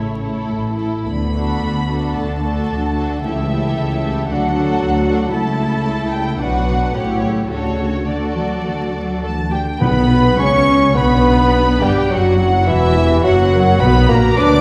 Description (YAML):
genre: classical, dramatic, fast romantic movement for symphony orchestra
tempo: 102-115 BPM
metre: 4/4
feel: rubato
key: D major, B minor from 9.8 s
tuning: A4 = 440 Hz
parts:
  - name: rich symphonic violin section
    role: melody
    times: 0.0-14.6 s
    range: C#5 to D6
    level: -26 LUFS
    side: equal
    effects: none
  - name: rich chamber violin section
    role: second line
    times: 0.0-14.6 s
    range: E4 to D5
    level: -27 LUFS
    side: equal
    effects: none
  - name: warm symphonic viola section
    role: accompaniment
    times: 0.0-14.6 s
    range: E3 to B4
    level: -24 LUFS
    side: equal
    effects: none
  - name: mellow French horn section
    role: sustained chords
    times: 0.0-14.6 s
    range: C#3 to B4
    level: -25 LUFS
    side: equal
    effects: none
  - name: dark symphonic cello section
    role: bass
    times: 0.0-14.6 s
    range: E2 to F#3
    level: -24 LUFS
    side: equal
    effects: none
  - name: rich symphonic double bass section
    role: bass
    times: 0.0-14.6 s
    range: E1 to D2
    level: -23 LUFS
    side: equal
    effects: none
  - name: mellow hollow concert flute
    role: second line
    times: 9.2-14.6 s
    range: E5 to D6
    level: -26 LUFS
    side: equal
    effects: none
  - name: warm clarinet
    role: second line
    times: 9.8-14.6 s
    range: E4 to C#5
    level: -25 LUFS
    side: equal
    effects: none
  - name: mellow bassoon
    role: accompaniment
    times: 9.8-14.6 s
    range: E3 to C#4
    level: -23 LUFS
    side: equal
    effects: none
  - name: timpani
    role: percussion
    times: 9.8-10.6 s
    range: B2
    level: -23 LUFS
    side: equal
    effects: none
room: wet scoring stage reverb, RT60 1.6 s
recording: heard from further back in the room, vinyl crackle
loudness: -16 LUFS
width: mono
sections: 0.0-9.8 A section; 9.8-14.6 B section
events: none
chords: 0.0 A; 1.1 D; 3.2 A7/C#; 4.3 D; 5.3 A/C#; 6.4 Bm; 6.9 A7; 7.5 D; 9.8 Bm; 12.1 F#7